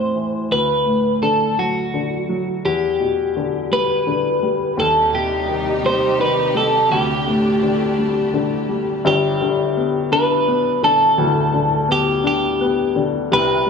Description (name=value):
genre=six-eight pop ballad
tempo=56 BPM (dotted quarters)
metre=6/8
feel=straight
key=G major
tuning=A4 = 440 Hz
part: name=twelve-string electric guitar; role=melody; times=0.0-13.7 s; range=C4 to C5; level=-18 LUFS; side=left 1 dB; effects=none
part: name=warm upright piano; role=accompaniment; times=0.0-13.7 s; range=D1 to D4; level=-20 LUFS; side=left 2 dB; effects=none
part: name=rich studio string section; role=sustained chords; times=4.8-9.0 s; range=Eb2 to G4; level=-24 LUFS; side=right 3 dB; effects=none
room=wet stone room reverb, RT60 1.4 s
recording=band playing live in one room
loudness=-16 LUFS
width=side -5 dB against mid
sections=0.5-9.1 A section; 9.1-13.7 B section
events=none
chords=0.0 Am; 0.5 D; 2.6 Em7; 4.8 Cm/Eb; 6.9 D7sus4; 9.1 Gadd9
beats=| 0.51 1.58 | 2.65 3.72 | 4.79 5.85 | 6.92 7.99 | 9.05 10.12 | 11.18 12.25 | 13.31